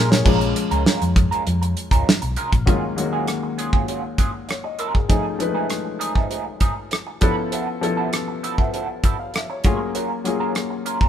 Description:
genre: lush 1970s-style soul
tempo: 99 BPM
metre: 4/4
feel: straight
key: Eb minor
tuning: A4 = 440 Hz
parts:
  - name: warm baby grand piano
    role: accompaniment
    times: 0.0-11.1 s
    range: Eb2 to F5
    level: -25 LUFS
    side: left 4 dB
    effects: none
  - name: electric guitar through a small old amp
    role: riff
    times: 0.0-11.1 s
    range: F3 to Db5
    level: -27 LUFS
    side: right 5 dB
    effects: wah
  - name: hollow-body short-scale fingered electric bass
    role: bass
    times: 0.0-2.7 s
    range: Bb1 to Bb2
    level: -22 LUFS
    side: equal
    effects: none
  - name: damped 70s drum kit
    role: drums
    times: 0.1-11.1 s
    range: crash cymbal, hi-hat, kick drum, rim click, snare drum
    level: -19 LUFS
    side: equal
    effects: none
room: light reverb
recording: band playing live in one room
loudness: -19 LUFS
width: side -10 dB against mid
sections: 0.3-2.7 A section; 2.7-11.1 B section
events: drum fill 0.0; grand piano solo 0.3-2.7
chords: 0.3 Bbm7; 2.7 Ebm11; 5.1 F7alt; 7.2 Db7alt; 9.6 Gbmaj7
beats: | 0.26 0.86 1.46 2.07 | 2.67 3.28 3.88 4.49 | 5.10 5.70 6.31 6.92 | 7.52 8.13 8.73 9.34 | 9.95 10.55

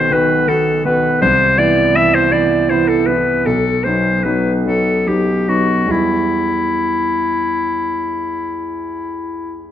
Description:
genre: classical, romantic duo for clarinet and grand piano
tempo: 47-55 BPM (dotted quarters)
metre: 12/8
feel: rubato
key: E minor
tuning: A4 = 442 Hz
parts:
  - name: bright clarinet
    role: melody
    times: 0.0-9.6 s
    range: E4 to E5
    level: -16 LUFS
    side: left 2 dB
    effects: none
  - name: clear concert grand piano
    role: accompaniment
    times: 0.0-9.7 s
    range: B1 to F#4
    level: -17 LUFS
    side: right 2 dB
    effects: none
room: wet recital hall reverb, RT60 1.7 s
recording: none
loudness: -13 LUFS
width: side -10 dB against mid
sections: 0.0-9.7 A section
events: none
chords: 0.0 B; 1.2 Cmaj7; 3.4 B; 5.9 Em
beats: 0.10 | 1.21 2.31 3.45 4.64 | 5.89 7.14 8.38 9.62

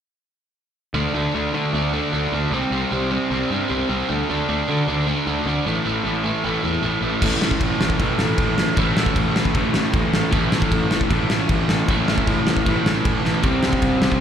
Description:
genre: punk rock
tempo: 154 BPM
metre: 4/4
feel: straight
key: unclear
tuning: A4 = 440 Hz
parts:
  - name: overdriven electric guitar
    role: riff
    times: 0.9-14.2 s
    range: A2 to D4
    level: -25 LUFS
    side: left 10 dB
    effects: slapback echo
  - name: overdriven electric guitar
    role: riff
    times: 0.9-14.2 s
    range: A2 to D4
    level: -24 LUFS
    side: right 9 dB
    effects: none
  - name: fuzz picked electric bass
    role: bass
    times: 0.9-14.2 s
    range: A1 to D3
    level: -25 LUFS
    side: equal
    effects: overdrive
  - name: crunchy overdriven guitar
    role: riff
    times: 7.2-14.2 s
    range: A2 to C4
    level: -27 LUFS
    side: left 2 dB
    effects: none
  - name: big rock drum kit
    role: drums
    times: 7.2-14.2 s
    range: crash cymbal, kick drum, snare drum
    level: -20 LUFS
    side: equal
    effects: none
room: small room ambience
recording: live gig heard through the venue's PA, club reverb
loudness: -18 LUFS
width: side -8 dB against mid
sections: 1.0-7.2 A section; 7.2-14.2 B section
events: drum fill 13.2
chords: 1.0 D5; 2.5 C5; 4.1 D5; 5.7 A5; 13.4 C5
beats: | 0.96 1.35 1.74 2.13 | 2.53 2.92 3.31 3.70 | 4.09 4.49 4.88 5.27 | 5.66 6.05 6.44 6.83 | 7.22 7.61 8.00 8.39 | 8.78 9.17 9.56 9.95 | 10.33 10.72 11.11 11.50 | 11.89 12.28 12.66 13.05 | 13.44 13.83

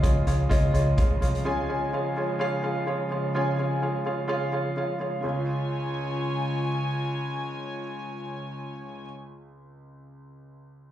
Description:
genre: piano-driven pop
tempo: 127 BPM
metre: 4/4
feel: swing 56% on 16ths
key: Db major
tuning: A4 = 439 Hz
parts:
  - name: warm concert grand piano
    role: accompaniment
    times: 0.0-10.9 s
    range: Db2 to Ab5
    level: -30 LUFS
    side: equal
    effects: plate reverb, slapback echo
  - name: dark studio string section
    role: sustained chords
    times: 0.0-9.0 s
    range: Db3 to Ab5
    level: -30 LUFS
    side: equal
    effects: stereo widening
  - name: vintage muted fingered electric bass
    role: bass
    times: 0.0-1.4 s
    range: C2 to Db2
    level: -24 LUFS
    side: equal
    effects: none
  - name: loose indie drum kit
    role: drums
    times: 0.0-1.4 s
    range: hi-hat, kick drum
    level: -25 LUFS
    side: equal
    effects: none
room: light reverb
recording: live gig heard through the venue's PA, club reverb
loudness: -25 LUFS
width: side -12 dB against mid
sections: 0.0-5.2 A section; 5.2-9.0 B section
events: none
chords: 0.0 Db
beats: 0.04 0.51 0.98 | 1.46 1.93 2.40 2.87 | 3.35 3.82 4.29 4.77 | 5.24 5.71 6.18 6.66 | 7.13 7.60 8.08 8.55

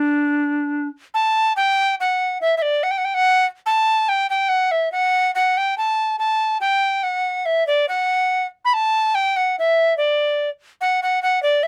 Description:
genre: medieval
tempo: 143 BPM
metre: 3/4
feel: straight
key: D major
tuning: A4 = 439 Hz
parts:
  - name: tenor recorder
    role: solo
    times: 0.0-11.7 s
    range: D4 to B5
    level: -19 LUFS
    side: equal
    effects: none
room: light reverb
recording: none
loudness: -19 LUFS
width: mono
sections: 0.0-1.1 A section; 1.1-11.2 A section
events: none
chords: none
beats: 0.29 0.71 | 1.14 1.56 1.98 | 2.40 2.82 3.24 | 3.66 4.08 4.50 | 4.92 5.35 5.77 | 6.19 6.61 7.03 | 7.45 7.87 8.29 | 8.71 9.13 9.55 | 9.97 10.39 10.81 | 11.23 11.65

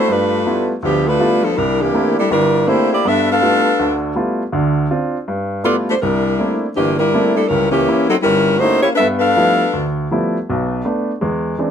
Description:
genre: jazz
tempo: 162 BPM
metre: 4/4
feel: swing 65% on 8ths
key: G mixolydian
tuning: A4 = 442 Hz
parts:
  - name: warm saxophone section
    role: melody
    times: 0.0-9.9 s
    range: E3 to F5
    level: -14 LUFS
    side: left 1 dB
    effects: none
  - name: clear baby grand piano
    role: accompaniment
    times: 0.1-11.7 s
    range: G1 to F4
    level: -18 LUFS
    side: right 1 dB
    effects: none
room: light reverb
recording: close, detailed microphones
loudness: -14 LUFS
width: side -8 dB against mid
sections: 0.1-11.7 A section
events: none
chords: 0.1 G13; 1.6 C13; 3.0 G13; 4.5 Dm7; 5.3 G13; 6.0 C13; 7.5 C#dim7; 9.0 G13; 10.5 Bm7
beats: | 0.08 0.45 0.82 1.19 | 1.56 1.94 2.31 2.68 | 3.05 3.42 3.79 4.16 | 4.54 4.91 5.28 5.65 | 6.02 6.39 6.76 7.13 | 7.50 7.88 8.25 8.62 | 8.99 9.36 9.73 10.10 | 10.47 10.85 11.22 11.59

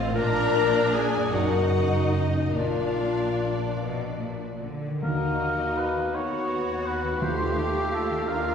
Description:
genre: classical, slow romantic movement for symphony orchestra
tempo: 48-57 BPM (dotted quarters)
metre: 6/8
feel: rubato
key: Eb minor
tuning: A4 = 440 Hz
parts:
  - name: rich studio violin section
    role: melody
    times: 0.0-8.5 s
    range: D5 to F#5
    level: -35 LUFS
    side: left 2 dB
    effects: none
  - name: rich studio violin section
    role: second line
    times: 0.0-8.5 s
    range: F4 to Bb5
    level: -35 LUFS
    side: left 2 dB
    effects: none
  - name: warm clarinet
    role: second line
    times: 0.0-8.5 s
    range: D#4 to Bb4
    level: -30 LUFS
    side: left 3 dB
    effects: none
  - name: rich studio viola section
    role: accompaniment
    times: 0.0-8.5 s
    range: A3 to Eb4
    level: -33 LUFS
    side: right 1 dB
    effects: none
  - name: concert harp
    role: arpeggios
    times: 0.0-8.5 s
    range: Gb2 to Bb4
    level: -32 LUFS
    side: left 5 dB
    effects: none
  - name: rich studio cello section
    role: bass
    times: 0.1-8.5 s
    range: Gb2 to G4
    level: -30 LUFS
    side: equal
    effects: none
  - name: rich studio double bass section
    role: bass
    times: 0.2-8.5 s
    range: Gb1 to Eb2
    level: -32 LUFS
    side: right 1 dB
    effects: none
  - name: mellow hollow concert flute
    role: second line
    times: 5.0-8.5 s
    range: G5 to Db6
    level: -36 LUFS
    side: right 1 dB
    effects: none
  - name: mellow oboe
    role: second line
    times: 5.0-8.5 s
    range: G4 to Db5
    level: -30 LUFS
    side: equal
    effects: none
  - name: warm bassoon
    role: accompaniment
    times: 5.0-8.5 s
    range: A3 to B3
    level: -34 LUFS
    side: equal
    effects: none
  - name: mellow French horn section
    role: sustained chords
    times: 5.0-8.5 s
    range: A3 to Gb4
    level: -33 LUFS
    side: left 1 dB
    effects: none
  - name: timpani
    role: percussion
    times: 5.0-8.2 s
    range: Eb3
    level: -34 LUFS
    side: right 2 dB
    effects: none
room: wet scoring stage reverb, RT60 2.1 s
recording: heard from further back in the room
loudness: -23 LUFS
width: side -7 dB against mid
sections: 0.0-5.0 A section; 5.0-8.5 B section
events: none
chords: 0.2 Bb; 1.3 Ebm/Gb; 2.5 Bb; 5.0 Ebm; 6.1 B/D#; 7.2 F7/Eb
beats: | 0.15 1.33 | 2.55 3.79 | 5.02 6.13 | 7.21 8.28

